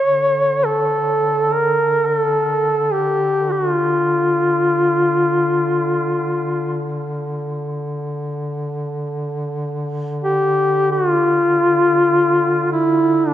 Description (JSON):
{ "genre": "caucasian folk, Caucasian lament", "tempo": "free time", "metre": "none", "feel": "none", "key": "D harmonic minor", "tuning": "A4 = 438 Hz", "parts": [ { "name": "mellow duduk", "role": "melody", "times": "0.0-13.3 s", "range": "D4 to C#5", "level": "-15 LUFS", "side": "equal", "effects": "none" }, { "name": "mellow duduk", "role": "drone", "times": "0.0-13.3 s", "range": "D3", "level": "-24 LUFS", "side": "left 1 dB", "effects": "none" } ], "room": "wet church reverb, RT60 3.4 s", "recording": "dark, warm production", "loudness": "-16 LUFS", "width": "side -12 dB against mid", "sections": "0.0-13.3 A section", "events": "slowing down 10.8-13.3", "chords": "none" }